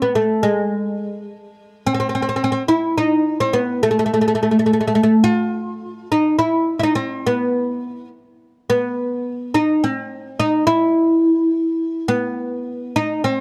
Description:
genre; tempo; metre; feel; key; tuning
persian; 70 BPM (dotted quarters); 6/8; straight; E dastgah chahargah; A4 = 438 Hz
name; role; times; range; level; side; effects
oud; solo; 0.0-13.4 s; G#3 to F4+45c; -19 LUFS; equal; none
room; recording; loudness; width
studio ambience; dry, close 1970s-style studio recording; -19 LUFS; mono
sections
0.0-12.4 A section; 12.4-13.4 A section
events
none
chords
none

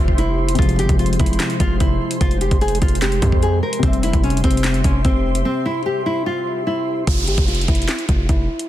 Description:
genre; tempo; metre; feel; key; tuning
hip hop, trap; 148 BPM; 4/4; half-time; unclear; A4 = 440 Hz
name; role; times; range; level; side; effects
nylon-string guitar; melody; 0.0-8.7 s; C4 to Bb4; -22 LUFS; equal; low-pass filter, ping-pong delay
dark concert grand piano; accompaniment; 0.0-7.1 s; C3 to E5; -26 LUFS; left 3 dB; low-pass filter
glassy FM pad; sustained chords; 0.0-7.0 s; Ab3 to C6; -27 LUFS; equal; ensemble chorus, built-in reverb
distorted 808-style bass; bass; 0.0-8.5 s; F1 to F2; -20 LUFS; equal; distortion
trap drum kit; drums; 0.1-8.7 s; handclaps, hi-hat, kick drum, snare drum; -19 LUFS; equal; none
downlifter; sound effects; 7.1-8.7 s; none; -26 LUFS; right 2 dB; none
room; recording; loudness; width
digital ambience; dense, heavily limited modern master; -16 LUFS; side -13 dB against mid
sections
0.0-7.1 A section; 7.1-8.7 B section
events
break 5.5-7.1; filter sweep 7.1-8.7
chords
0.0 C/F; 0.6 Fm; 3.8 C/F; 7.1 N.C.

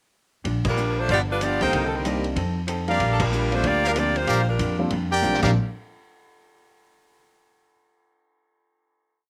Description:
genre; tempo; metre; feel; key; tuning
jazz, big band swing; 189 BPM; 4/4; swing 62% on 8ths; Bb major; A4 = 440 Hz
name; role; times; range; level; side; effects
vintage hollow-body jazz guitar; accompaniment; 0.4-5.5 s; G2 to A4; -34 LUFS; equal; none
upright bass; bass; 0.4-5.5 s; G1 to F2; -28 LUFS; equal; none
vintage drum kit; drums; 0.4-5.5 s; crash cymbal, hi-hat, kick drum, ride cymbal, snare drum; -34 LUFS; equal; none
bright saxophone section; melody; 0.7-4.8 s; G3 to D5; -26 LUFS; equal; slapback echo
clear upright piano; accompaniment; 1.6-5.5 s; D3 to F4; -31 LUFS; equal; none
bright trumpet section; stabs; 1.6-5.5 s; G4 to G5; -26 LUFS; equal; none
room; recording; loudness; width
little or no reverb; recorded outdoors, with no room sound; -23 LUFS; mono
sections
0.5-5.5 A section; 5.5-6.8 final hit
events
band accent 0.6, 3.2; drum fill 5.2-5.5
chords
0.5 Bb6; 1.1 G7; 1.7 Cm7; 2.4 F7; 3.0 Bb6; 5.5 N.C.

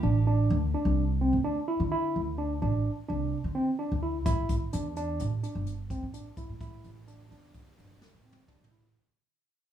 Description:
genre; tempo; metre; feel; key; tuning
progressive instrumental, band music in an uneven meter; 128 BPM; 5/4; straight; unclear; A4 = 440 Hz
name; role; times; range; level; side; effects
barky tine electric piano; arpeggios; 0.0-8.9 s; C4 to E4; -31 LUFS; right 1 dB; plate reverb
upright bass; bass; 0.0-8.9 s; G1 to D3; -29 LUFS; right 1 dB; none
jazz brush drum kit; drums; 4.3-8.8 s; hi-hat, kick drum, snare drum, toms; -33 LUFS; equal; none
room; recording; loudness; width
light reverb; studio ambience; -27 LUFS; side -10 dB against mid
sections
0.0-9.0 A section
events
fade-out 0.0-9.0; drum fill 8.0-9.0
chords
0.0 Dsus2; 4.3 A7(no3)

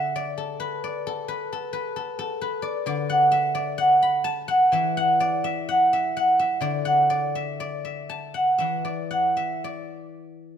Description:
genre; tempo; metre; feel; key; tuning
chinese traditional, Chinese solo plucked strings; 51-66 BPM; 4/4; rubato; D gong mode; A4 = 438 Hz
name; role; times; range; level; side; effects
guzheng; solo; 0.0-10.6 s; D3 to B5; -21 LUFS; equal; none
room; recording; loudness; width
light reverb; minimal, uncompressed stereo recording; -21 LUFS; side -8 dB against mid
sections
0.0-10.6 A section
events
none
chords
none

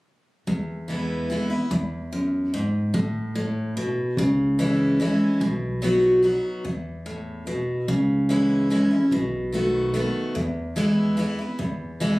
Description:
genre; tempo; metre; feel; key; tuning
bluegrass; 146 BPM; 3/4; straight; E major; A4 = 440 Hz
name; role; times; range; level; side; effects
picked steel-string acoustic guitar; accompaniment; 0.5-12.2 s; E2 to F#4; -22 LUFS; equal; none
upright bass; bass; 0.5-12.2 s; A1 to E2; -30 LUFS; equal; none
room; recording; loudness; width
moderate small room reverb, RT60 0.5 s; recorded on a phone in the room, club reverb; -21 LUFS; side -21 dB against mid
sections
0.5-1.7 A section; 1.7-11.6 B section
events
none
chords
0.5 E; 2.9 Asus2; 4.2 C#m; 5.4 B; 6.7 E5; 7.9 C#m; 9.1 B7; 10.4 E

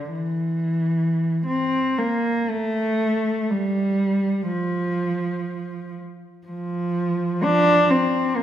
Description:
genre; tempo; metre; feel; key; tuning
classical, free, expressive piece for unaccompanied cello; 38-64 BPM; 3/4; rubato; D minor; A4 = 440 Hz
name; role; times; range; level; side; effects
dark cello; solo; 0.0-8.4 s; D3 to D4; -20 LUFS; equal; none
room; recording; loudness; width
moderate scoring stage reverb, RT60 2.0 s; none; -20 LUFS; side -11 dB against mid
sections
0.0-1.5 A section; 1.5-8.4 B section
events
none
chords
none

